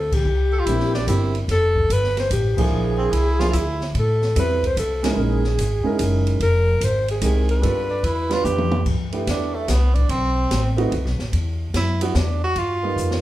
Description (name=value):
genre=jazz, small-group swing and bop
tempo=146 BPM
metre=3/4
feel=swing 66% on 8ths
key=G major from 8.9 s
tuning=A4 = 440 Hz
part: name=breathy alto saxophone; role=melody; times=0.0-8.4 s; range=G4 to C5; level=-23 LUFS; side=left 1 dB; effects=none
part: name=upright bass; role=bass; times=0.0-13.2 s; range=F1 to A2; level=-21 LUFS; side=equal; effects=none
part: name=open jazz drum kit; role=drums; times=0.1-13.2 s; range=crash cymbal, hi-hat, kick drum, ride cymbal, snare drum, toms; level=-28 LUFS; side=equal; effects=none
part: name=clear tenor saxophone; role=second line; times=0.5-3.9, 7.9-13.2 s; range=A3 to A4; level=-25 LUFS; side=right 2 dB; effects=none
part: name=warm concert grand piano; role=accompaniment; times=0.7-13.2 s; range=F3 to B4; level=-25 LUFS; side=right 3 dB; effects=none
room=moderate large studio reverb, RT60 1.0 s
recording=band playing live in one room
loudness=-18 LUFS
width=side -15 dB against mid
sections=0.0-8.9 A section; 8.9-13.2 B section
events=band accent 0.0, 2.5, 5.0; drum fill 8.5-8.9, 13.0; tenor saxophone solo 8.9-13.2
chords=0.3 C9; 1.5 Fadd9; 2.7 Bb7#11; 3.9 Am9; 5.2 F#13; 6.4 Fm11; 7.6 G7; 8.9 G6; 10.1 B7(no3); 11.3 E7sus2; 12.6 G7alt